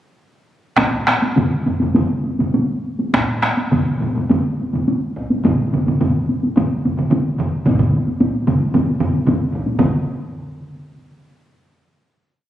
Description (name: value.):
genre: japanese traditional, taiko drum ensemble.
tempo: 101-122 BPM.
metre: 4/4.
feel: straight.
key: none.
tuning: none.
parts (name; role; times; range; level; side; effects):
taiko ensemble; percussion; 0.8-10.0 s; none; -18 LUFS; equal; none.
taiko ensemble; percussion; 0.8-10.3 s; none; -24 LUFS; left 2 dB; none.
taiko ensemble; percussion; 0.8-10.3 s; none; -21 LUFS; right 2 dB; none.
taiko ensemble; percussion; 0.8-10.0 s; none; -26 LUFS; equal; none.
room: wet recital hall reverb, RT60 1.8 s.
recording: recorded on a phone in the room, club reverb, compression.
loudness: -16 LUFS.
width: side -12 dB against mid.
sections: 0.8-9.8 A section; 9.8-11.8 final hit.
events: speeding up 0.8-11.8.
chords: none.